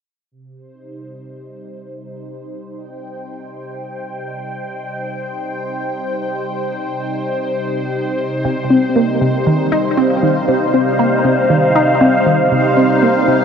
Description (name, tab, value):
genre	ambient, sequencer-driven space music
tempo	118 BPM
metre	4/4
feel	straight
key	C minor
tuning	A4 = 440 Hz
part	phased analog pad	sustained chords	0.3-13.4 s	C3 to G5	-18 LUFS	equal	phaser, chorus
part	resonant blip pluck	riff	8.4-13.3 s	C3 to Eb4	-14 LUFS	equal	phaser, analog chorus, tape echo
room	wet huge ambient reverb, RT60 9.3 s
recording	worn, warbling old tape, cassette tape, warbly pitch drift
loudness	-13 LUFS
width	side -7 dB against mid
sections	0.3-13.4 A section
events	fade-in on analog synth pad 0.3-13.4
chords	0.3 Cm